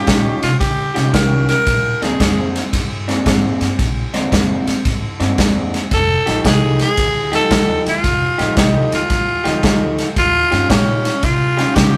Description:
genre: electric blues shuffle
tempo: 113 BPM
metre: 4/4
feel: swing 66% on 8ths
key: Bb mixolydian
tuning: A4 = 443 Hz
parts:
  - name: growling tenor saxophone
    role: melody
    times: 0.0-2.6, 5.9-12.0 s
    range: Db4 to Bb4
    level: -20 LUFS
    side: equal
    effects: none
  - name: electric guitar through a small old amp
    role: riff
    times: 0.0-12.0 s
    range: Bb2 to G4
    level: -23 LUFS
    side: equal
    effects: spring reverb
  - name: upright bass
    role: bass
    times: 0.0-12.0 s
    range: F1 to Db3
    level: -24 LUFS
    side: equal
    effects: none
  - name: natural country drum kit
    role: drums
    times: 0.1-11.9 s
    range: kick drum, ride cymbal, snare drum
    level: -20 LUFS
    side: equal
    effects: none
room: moderate studio reverb, RT60 0.5 s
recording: rough rehearsal-room recording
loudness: -16 LUFS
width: mono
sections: 0.0-12.0 A section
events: none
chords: 0.0 Eb9; 1.7 Bb9; 5.9 F9; 10.2 Eb9

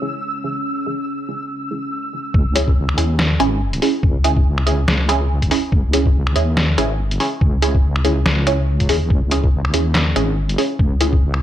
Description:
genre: deep dubstep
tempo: 142 BPM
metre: 4/4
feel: swing 58% on 16ths, half-time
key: C# minor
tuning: A4 = 441 Hz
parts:
  - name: overtone-sweeping drone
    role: sustained chords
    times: 0.0-2.3 s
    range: C#3 to C#4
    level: -29 LUFS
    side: equal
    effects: chorus, built-in reverb
  - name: filtered dub chord stab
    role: stabs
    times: 0.0-11.1 s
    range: C#4 to G#4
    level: -21 LUFS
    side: right 2 dB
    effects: phaser, analog chorus, dub echo
  - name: flickering grainy texture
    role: texture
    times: 0.0-2.4 s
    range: E6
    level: -28 LUFS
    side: equal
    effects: built-in reverb
  - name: deep soft wobble bass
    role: bass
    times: 2.3-11.4 s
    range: G#1 to D#2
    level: -18 LUFS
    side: equal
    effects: chorus
  - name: electronic kick drum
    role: drums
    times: 2.3-11.2 s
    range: none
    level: -17 LUFS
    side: equal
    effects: none
  - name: trip hop sampler-style drum kit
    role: drums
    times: 2.6-11.4 s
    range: finger snaps, handclaps, hi-hat, snare drum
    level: -21 LUFS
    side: left 1 dB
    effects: none
room: light reverb, digital ambience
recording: none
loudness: -15 LUFS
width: side -12 dB against mid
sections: 0.0-2.3 A section; 2.3-11.4 B section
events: filter sweep on synth drone 0.0-2.3; drop 2.3-11.4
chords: 0.0 C#m

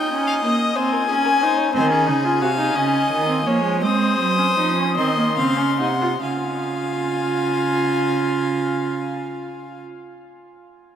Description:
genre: classical, baroque-style fugue for string quartet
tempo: 44-62 BPM (dotted quarters)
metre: 6/8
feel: straight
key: Db major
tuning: A4 = 440 Hz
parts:
  - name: warm violin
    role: melody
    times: 0.0-9.8 s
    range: Eb5 to Eb6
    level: -23 LUFS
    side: left 6 dB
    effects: none
  - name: warm violin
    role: second line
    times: 0.0-9.8 s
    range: Ab4 to Gb5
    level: -26 LUFS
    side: left 1 dB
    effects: none
  - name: rich viola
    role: accompaniment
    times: 0.0-9.8 s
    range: Ab3 to Gb4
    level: -23 LUFS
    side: right 2 dB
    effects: none
  - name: dark cello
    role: bass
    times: 1.7-9.8 s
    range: C3 to Ab3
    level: -24 LUFS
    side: right 5 dB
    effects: none
room: wet cathedral reverb, RT60 5.7 s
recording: in a vast, echoing space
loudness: -17 LUFS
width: side -9 dB against mid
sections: 0.0-6.2 A section; 6.2-11.0 B section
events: slowing down 0.8-6.2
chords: 0.0 Eb7; 0.8 Ab/C; 1.7 Ab; 2.8 Db; 3.8 Ab7; 6.2 Db

